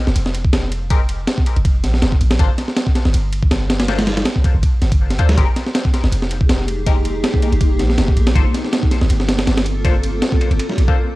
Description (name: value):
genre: drum and bass, jungle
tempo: 161 BPM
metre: 4/4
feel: swing 54% on 16ths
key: unclear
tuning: A4 = 440 Hz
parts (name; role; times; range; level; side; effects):
- warm 808-style bass; bass; 0.1-10.9 s; F1 to D2; -18 LUFS; equal; none
- breakbeat sampler-style drum kit; drums; 0.1-11.0 s; kick drum, ride cymbal, snare drum; -16 LUFS; equal; studio reverb, cassette tape
- band-passed chord stab; stabs; 0.9-11.0 s; Ab3 to C5; -28 LUFS; left 8 dB; phaser, cassette tape, dub echo
- granular cloud pad; sustained chords; 6.2-11.2 s; Bb3 to A4; -23 LUFS; equal; built-in reverb, cassette tape
room: digital ambience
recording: home recording on cassette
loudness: -14 LUFS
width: side -19 dB against mid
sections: 0.0-11.2 A section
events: none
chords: 0.0 Fsus4; 2.4 G5; 5.4 Fm11; 8.4 Gm11